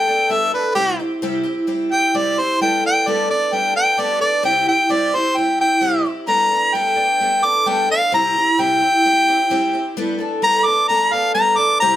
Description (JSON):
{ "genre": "rock", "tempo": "130 BPM", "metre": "4/4", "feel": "straight", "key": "G major", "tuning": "A4 = 440 Hz", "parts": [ { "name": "warm harmonica", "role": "melody", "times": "0.0-12.0 s", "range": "G4 to D6", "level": "-15 LUFS", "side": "equal", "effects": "none" }, { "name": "picked twelve-string acoustic guitar", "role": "accompaniment", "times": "0.0-12.0 s", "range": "C3 to A4", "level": "-21 LUFS", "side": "equal", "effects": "none" } ], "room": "moderate studio reverb, RT60 0.7 s", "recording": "none", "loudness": "-15 LUFS", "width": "side -12 dB against mid", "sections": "0.0-12.0 A section", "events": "harmonica solo 0.0-12.0", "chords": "0.0 Gadd9; 0.8 C; 2.6 Gadd9; 4.5 C; 6.3 Gadd9; 8.1 C; 10.0 Gadd9", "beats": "0.31 | 0.77 1.23 1.69 2.15 | 2.61 3.07 3.53 3.99 | 4.45 4.91 5.37 5.83 | 6.29 6.75 7.21 7.67 | 8.13 8.59 9.05 9.51 | 9.97 10.43 10.89 11.35 | 11.81" }